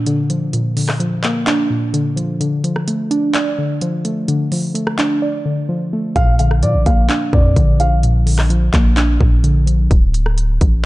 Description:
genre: hip hop, trap.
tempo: 128 BPM.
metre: 4/4.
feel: half-time.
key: unclear.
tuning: A4 = 440 Hz.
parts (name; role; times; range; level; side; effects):
warbly dusty pluck; accompaniment; 0.0-9.9 s; Bb2 to D5; -17 LUFS; equal; chorus.
trap drum kit; drums; 0.1-10.7 s; handclaps, hi-hat, kick drum, rim click; -18 LUFS; equal; none.
dark baby grand piano; melody; 6.2-8.0 s; D5 to F5; -20 LUFS; equal; tape echo.
long sustained 808-style bass; bass; 6.2-10.9 s; D1 to Bb2; -15 LUFS; equal; none.
room: digital ambience.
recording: dark, warm production, nothing above 10.7 kHz.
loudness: -14 LUFS.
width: side -18 dB against mid.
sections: 0.0-10.9 A section.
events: break 0.0-6.2.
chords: 0.0 Bb; 2.4 Dm; 6.2 Bb; 9.9 D5.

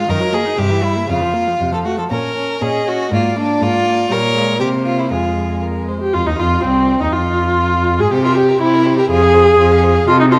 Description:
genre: quick classical-period movement for string quartet.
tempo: 121 BPM.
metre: 2/4.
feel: straight.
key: F minor from 4.1 s.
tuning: A4 = 440 Hz.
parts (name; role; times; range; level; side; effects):
rich violin; melody; 0.0-10.4 s; C4 to F5; -28 LUFS; equal; none.
rich violin; second line; 0.0-10.4 s; C4 to Bb4; -22 LUFS; equal; none.
warm viola; accompaniment; 0.0-10.4 s; C3 to Ab4; -18 LUFS; equal; none.
rich cello; bass; 0.1-10.4 s; C2 to C3; -21 LUFS; equal; none.
room: moderate scoring stage reverb, RT60 1.7 s.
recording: none.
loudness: -15 LUFS.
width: mono.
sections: 0.0-6.1 A section; 6.1-10.4 B section.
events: none.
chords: 0.1 Ebm/Gb; 0.6 C7/G; 1.1 Bbm/F; 1.6 F; 2.1 Bbm; 3.1 Bb7/Ab; 4.1 Gdim/Bb (rootless); 4.6 C5; 5.1 Fm; 6.1 F5; 7.1 Fm; 8.1 C7; 9.1 Fm.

